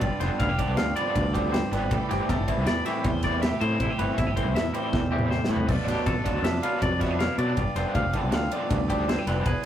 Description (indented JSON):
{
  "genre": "math rock and midwest emo",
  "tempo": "159 BPM",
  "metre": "5/4",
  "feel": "straight",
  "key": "unclear",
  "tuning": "A4 = 440 Hz",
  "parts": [
    { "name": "twangy electric guitar", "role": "accompaniment", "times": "0.0-9.7 s", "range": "E2 to G#4", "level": "-31 LUFS", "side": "right 3 dB", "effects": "none" },
    { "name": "twangy electric guitar", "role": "arpeggios", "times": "0.0-9.6 s", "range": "G4 to F5", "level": "-31 LUFS", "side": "left 2 dB", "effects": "none" },
    { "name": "raw garage guitar", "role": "riff", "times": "0.0-9.5 s", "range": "B2 to E4", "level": "-30 LUFS", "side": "equal", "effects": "overdrive, harmonic tremolo" },
    { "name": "growling fingered electric bass", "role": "bass", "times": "0.0-9.5 s", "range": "E1 to B2", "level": "-28 LUFS", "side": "equal", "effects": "overdrive" },
    { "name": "modern studio drum kit", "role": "drums", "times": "0.0-9.5 s", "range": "crash cymbal, kick drum, ride cymbal, snare drum, toms", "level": "-29 LUFS", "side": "equal", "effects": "none" }
  ],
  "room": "moderate booth ambience, RT60 0.2 s",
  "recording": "rough rehearsal-room recording",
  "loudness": "-23 LUFS",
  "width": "side -10 dB against mid",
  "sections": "0.0-9.7 A section",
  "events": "drum fill 4.9-5.7",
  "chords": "0.0 G7sus4; 1.9 Am9; 5.7 Bm7b5; 7.6 G7sus4"
}